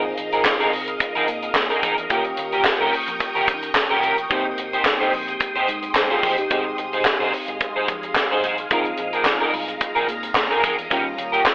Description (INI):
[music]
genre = early-eighties boogie funk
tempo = 109 BPM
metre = 4/4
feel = straight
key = unclear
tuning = A4 = 440 Hz
[part]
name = mellow FM electric piano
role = accompaniment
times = 0.0-11.5 s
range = G3 to C5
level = -29 LUFS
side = equal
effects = chorus
[part]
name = phased string machine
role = sustained chords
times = 0.0-11.5 s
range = Ab3 to Eb6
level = -28 LUFS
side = equal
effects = ensemble chorus, phaser
[part]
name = electric guitar at the edge of break-up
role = riff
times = 0.0-11.5 s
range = Db4 to C5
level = -22 LUFS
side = right 1 dB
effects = ensemble chorus
[part]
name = vintage muted fingered electric bass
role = bass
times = 0.0-11.4 s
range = F1 to Eb3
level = -41 LUFS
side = equal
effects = none
[part]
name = tight funk drum kit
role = drums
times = 0.2-11.5 s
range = handclaps, hi-hat, kick drum, snare drum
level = -21 LUFS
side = equal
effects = gated reverb
[sound]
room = moderate large studio reverb, RT60 1.3 s, small room ambience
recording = telephone sound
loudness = -18 LUFS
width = side -24 dB against mid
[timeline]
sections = 0.0-11.5 A section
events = none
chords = 0.0 Bb7sus4; 2.1 Eb7; 4.3 Abmaj7; 6.5 Fm7; 8.7 Bb7sus4; 10.9 Eb7